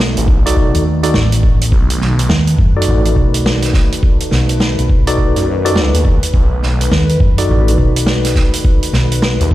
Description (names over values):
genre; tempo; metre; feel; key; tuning
glitch hop; 104 BPM; 4/4; swing 62% on 16ths; unclear; A4 = 441 Hz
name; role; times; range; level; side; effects
warbly tape-like pad; sustained chords; 0.0-9.5 s; D#3 to B4; -22 LUFS; equal; chorus, built-in reverb, phaser, sidechain pumping
tine electric piano; stabs; 0.0-9.5 s; D#4 to D5; -19 LUFS; equal; fast stereo tremolo, sidechain pumping, digital delay
hollow-body short-scale fingered electric bass; bass; 0.0-9.4 s; A1 to F#2; -14 LUFS; equal; none
phased detuned saw bass; bass; 0.2-9.5 s; A1 to F#2; -14 LUFS; equal; phaser, tube saturation
vintage drum kit; drums; 0.2-9.5 s; hi-hat, snare drum; -19 LUFS; right 1 dB; none
electronic kick drum; drums; 0.3-9.5 s; none; -12 LUFS; equal; none
room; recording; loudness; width
studio reverb; played on a big sound system in a bare room, large studio reverb; -11 LUFS; side -15 dB against mid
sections
0.0-9.5 A section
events
none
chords
0.0 B7#9